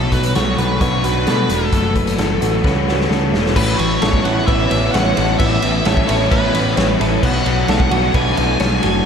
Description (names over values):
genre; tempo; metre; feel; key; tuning
rock, shoegaze and dream pop; 131 BPM; 4/4; straight; A major; A4 = 441 Hz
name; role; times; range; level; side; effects
nasal lead guitar with a parked wah; melody; 0.0-9.1 s; A4 to G#5; -22 LUFS; equal; overdrive, tape echo
direct-recorded clean electric guitar; arpeggios; 0.0-9.1 s; A4 to C#5; -26 LUFS; left 7 dB; analog chorus, tape echo
electric guitar through a small old amp; riff; 0.0-9.1 s; F#2 to F#4; -22 LUFS; right 8 dB; reverse reverb
thick fuzz guitar; riff; 0.0-9.1 s; F#2 to F#4; -21 LUFS; left 8 dB; distortion, analog chorus
growling picked electric bass; bass; 0.0-9.0 s; E1 to B2; -20 LUFS; equal; overdrive
raw garage drum kit; drums; 0.1-8.9 s; crash cymbal, hi-hat, kick drum, ride cymbal, snare drum; -19 LUFS; equal; none
room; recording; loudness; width
moderate lush hall reverb, RT60 1.7 s, studio reverb; dreamy mix soaked in reverb; -14 LUFS; side -7 dB against mid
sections
0.0-3.6 A section; 3.6-9.1 B section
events
drum fill 2.6-3.6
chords
0.0 Bm7; 1.7 F#m7; 3.6 Aadd9; 7.2 Bm7